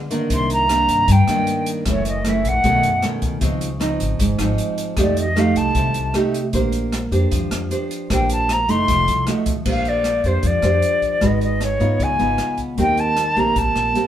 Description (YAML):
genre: bossa nova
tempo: 154 BPM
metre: 4/4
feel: straight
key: Bb major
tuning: A4 = 440 Hz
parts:
  - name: nylon-string guitar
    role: accompaniment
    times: 0.0-14.1 s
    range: Gb2 to C5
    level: -21 LUFS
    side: right 2 dB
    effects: none
  - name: open jazz drum kit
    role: drums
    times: 0.1-14.0 s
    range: crash cymbal, hi-hat, kick drum, rim click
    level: -26 LUFS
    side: equal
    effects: none
  - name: silver concert flute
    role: melody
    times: 0.3-14.1 s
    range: C5 to C6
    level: -19 LUFS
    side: left 1 dB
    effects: none
  - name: upright bass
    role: bass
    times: 0.3-13.9 s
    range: F1 to Ab2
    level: -22 LUFS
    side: equal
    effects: none
room: moderate studio reverb, RT60 0.8 s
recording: band playing live in one room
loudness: -16 LUFS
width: side -10 dB against mid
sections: 0.0-9.7 A section; 9.7-14.1 B section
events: flute solo 0.0-9.7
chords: 0.3 Cm9; 1.9 Gbm7; 2.6 B9; 3.4 Dbmaj9; 5.0 F9; 6.5 Bb69; 8.9 F7b9; 9.7 Bb69; 11.2 Abm7; 12.0 Db9; 12.8 Eb6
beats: | 0.30 0.69 1.08 1.47 | 1.86 2.25 2.64 3.03 | 3.42 3.81 4.20 4.59 | 4.98 5.37 5.76 6.15 | 6.54 6.93 7.32 7.71 | 8.10 8.49 8.88 9.27 | 9.66 10.05 10.44 10.83 | 11.22 11.61 12.00 12.39 | 12.78 13.17 13.56 13.95